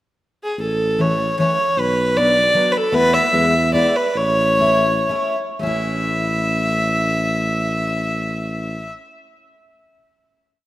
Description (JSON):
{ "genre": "alpine folk, alpine dance band", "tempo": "108-156 BPM", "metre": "3/4", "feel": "swing 54% on 8ths", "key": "A major", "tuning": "A4 = 440 Hz", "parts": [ { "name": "rich fiddle", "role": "melody", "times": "0.4-8.9 s", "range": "G#4 to E5", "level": "-18 LUFS", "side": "equal", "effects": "none" }, { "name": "mellow tuba", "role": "bass", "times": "0.6-8.9 s", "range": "A1 to E2", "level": "-22 LUFS", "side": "equal", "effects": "none" }, { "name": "picked steel-string acoustic guitar", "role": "accompaniment", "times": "1.0-9.0 s", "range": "E3 to E4", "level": "-25 LUFS", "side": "left 2 dB", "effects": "none" } ], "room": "moderate lush hall reverb, RT60 2.5 s", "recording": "rough home demo mix", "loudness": "-16 LUFS", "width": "side -15 dB against mid", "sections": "0.0-0.6 pickup bar; 0.6-5.6 A section; 5.6-8.9 final chord", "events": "slowing down 2.9-5.6", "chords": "0.0 N.C.; 0.6 A; 1.8 Bm; 2.9 Esus4; 3.3 E; 4.2 A" }